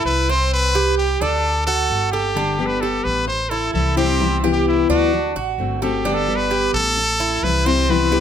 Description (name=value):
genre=latin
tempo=130 BPM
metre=4/4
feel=straight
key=unclear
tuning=A4 = 444 Hz
part: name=brilliant trumpet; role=melody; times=0.0-8.2 s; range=E4 to C5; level=-20 LUFS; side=equal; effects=none
part: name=Cuban tres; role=arpeggios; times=0.0-8.2 s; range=C4 to A4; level=-23 LUFS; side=right 5 dB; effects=none
part: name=upright bass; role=bass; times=0.0-8.2 s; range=G1 to D2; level=-23 LUFS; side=equal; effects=none
part: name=picked steel-string acoustic guitar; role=accompaniment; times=2.4-8.2 s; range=C3 to G4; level=-21 LUFS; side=left 6 dB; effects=none
room=light reverb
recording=close, detailed microphones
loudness=-16 LUFS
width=side -8 dB against mid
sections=0.0-8.2 A section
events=none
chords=0.0 Am (rootless); 0.5 C5; 1.4 D; 2.4 Gadd9; 3.3 Am7; 4.2 Cmaj7; 5.1 D7; 6.0 Gadd9; 7.0 Am7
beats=0.07 | 0.53 0.98 1.45 1.90 | 2.36 2.82 3.28 3.75 | 4.21 4.67 5.12 5.59 | 6.05 6.51 6.97 7.43 | 7.89